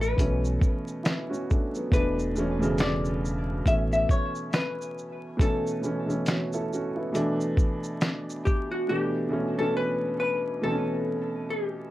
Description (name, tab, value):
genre	lo-fi hip hop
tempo	69 BPM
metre	4/4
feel	swing 59% on 16ths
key	unclear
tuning	A4 = 440 Hz
part	hollow-body jazz guitar	melody	0.0-11.9 s	F#4 to E5	-30 LUFS	left 2 dB	tape echo, plate reverb
part	warm upright piano	accompaniment	0.0-11.9 s	B2 to C#5	-28 LUFS	right 1 dB	cassette tape, plate reverb
part	sub bass with octave	bass	0.0-4.1 s	E1 to B1	-29 LUFS	equal	none
part	lo-fi sampler-style drum kit	drums	0.0-8.7 s	finger snaps, hi-hat, kick drum, shaker, snare drum	-25 LUFS	equal	none
room	moderate small room reverb, RT60 0.5 s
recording	vinyl crackle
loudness	-24 LUFS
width	side -16 dB against mid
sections	0.0-11.9 A section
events	none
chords	0.2 Bm11; 1.9 E5; 3.7 Aadd9; 5.4 B9sus4; 7.1 Bm7; 8.9 E5; 10.6 B9sus4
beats	0.18 1.05 | 1.92 2.79 3.66 4.53 | 5.40 6.27 7.14 8.01 | 8.88 9.75 10.62 11.49